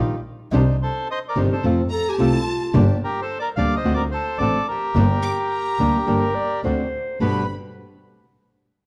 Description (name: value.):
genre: tango.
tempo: 108 BPM.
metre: 4/4.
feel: rubato.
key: G minor.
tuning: A4 = 440 Hz.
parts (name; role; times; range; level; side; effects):
flamenco guitar; accompaniment; 0.0-7.4 s; G2 to G4; -25 LUFS; equal; none.
bandoneon; stabs; 0.0-7.4 s; Bb3 to C5; -36 LUFS; equal; none.
rich double bass; bass; 0.0-7.4 s; G1 to F2; -25 LUFS; equal; none.
bandoneon; melody; 0.8-7.5 s; G4 to F5; -26 LUFS; equal; none.
clear studio violin section; second line; 1.9-7.5 s; Ab5 to D6; -34 LUFS; equal; none.
warm clarinet; second line; 1.9-7.5 s; F4 to D5; -29 LUFS; equal; none.
room: moderate recital hall reverb, RT60 1.6 s.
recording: dark, warm production.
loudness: -21 LUFS.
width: mono.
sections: 0.0-7.2 A section; 7.2-8.9 B section.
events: none.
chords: 0.0 Ebadd9; 0.5 Cmadd9; 1.6 F; 2.7 Gm; 3.8 D7; 5.0 Gm; 6.6 D7; 7.2 G.